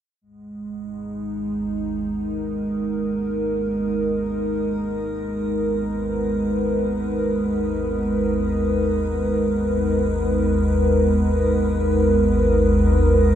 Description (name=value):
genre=ambient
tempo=free time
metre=none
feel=none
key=G# minor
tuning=A4 = 442 Hz
part: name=dark analog pad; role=sustained chords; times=0.4-13.4 s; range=G#3 to B4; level=-21 LUFS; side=right 1 dB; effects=chorus, shimmer reverb
part: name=deep rumbling drone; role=drone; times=0.9-13.4 s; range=G#1 to D#2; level=-24 LUFS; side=left 1 dB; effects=built-in reverb, phaser, lush chorus
part: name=icy glass pad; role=texture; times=0.7-13.4 s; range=B3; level=-35 LUFS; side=right 2 dB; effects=chorus, built-in reverb, shimmer reverb
room=wet spring reverb, RT60 2.5 s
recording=none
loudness=-19 LUFS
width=side -10 dB against mid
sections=0.2-13.4 A section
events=fade-in on ambient pad 0.2-13.4; filter sweep on synth drone 0.2-13.4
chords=0.2 G#madd9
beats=free time